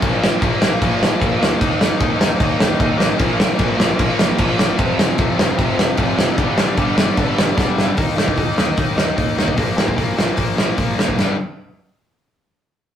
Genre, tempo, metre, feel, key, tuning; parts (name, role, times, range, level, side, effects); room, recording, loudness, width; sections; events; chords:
punk rock; 151 BPM; 4/4; straight; G minor; A4 = 438 Hz
distorted electric guitar; riff; 0.0-11.3 s; F2 to Eb4; -24 LUFS; right 4 dB; distortion
tight distorted guitar; riff; 0.0-11.3 s; F2 to Eb4; -21 LUFS; left 5 dB; distortion
fuzz picked electric bass; bass; 0.0-11.4 s; F1 to G2; -26 LUFS; right 1 dB; overdrive
loose indie drum kit; drums; 0.0-11.3 s; crash cymbal, hi-hat, kick drum, snare drum; -17 LUFS; equal
moderate small room reverb, RT60 0.5 s; rough rehearsal-room recording, warm saturation; -15 LUFS; side -9 dB against mid
0.0-8.0 A section; 8.0-11.2 B section; 11.2-12.8 C section
drum fill 7.6-8.0
0.0 Bb5; 1.6 Eb5; 3.2 Bb5; 4.8 F5; 6.4 G5; 8.0 Eb5; 9.6 Bb5; 11.2 G5